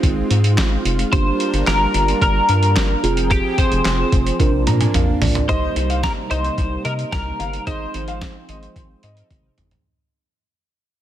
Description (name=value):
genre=synth-pop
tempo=110 BPM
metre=4/4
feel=straight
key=C minor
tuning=A4 = 440 Hz
part: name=muted felt-like synth keys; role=accompaniment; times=0.0-9.8 s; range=Bb3 to Bb5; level=-25 LUFS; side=right 6 dB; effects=chorus
part: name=brassy analog pad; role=sustained chords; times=0.0-9.8 s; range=C3 to G5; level=-26 LUFS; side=equal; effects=chorus
part: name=rubbery square bass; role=bass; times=0.0-9.8 s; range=F1 to C3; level=-20 LUFS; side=equal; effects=none
part: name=dusty soul sampler-style drum kit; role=drums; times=0.0-9.8 s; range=handclaps, hi-hat, kick drum, snare drum, toms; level=-21 LUFS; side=equal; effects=none
part: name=twelve-string electric guitar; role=melody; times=1.1-9.3 s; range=G4 to C5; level=-22 LUFS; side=left 1 dB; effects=analog chorus, tape echo
part: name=clear concert grand piano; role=second line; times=5.5-9.4 s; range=Eb5 to F5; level=-30 LUFS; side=left 4 dB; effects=tape echo
room=light reverb, digital ambience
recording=dense, heavily limited modern master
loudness=-16 LUFS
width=side -11 dB against mid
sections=0.0-5.5 A section; 5.5-9.9 B section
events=drum fill 4.4-5.5, 9.3-9.9; synth keys fill 4.4-5.5; fade-out 5.5-9.9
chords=0.0 Ab6; 1.1 Gm7; 3.0 Fmadd9; 4.4 Bbadd9; 5.5 Cm7; 7.7 Ab6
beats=0.03 0.58 | 1.12 1.67 2.22 2.76 | 3.31 3.85 4.40 4.94 | 5.49 6.03 6.58 7.12 | 7.67 8.22 8.76 9.31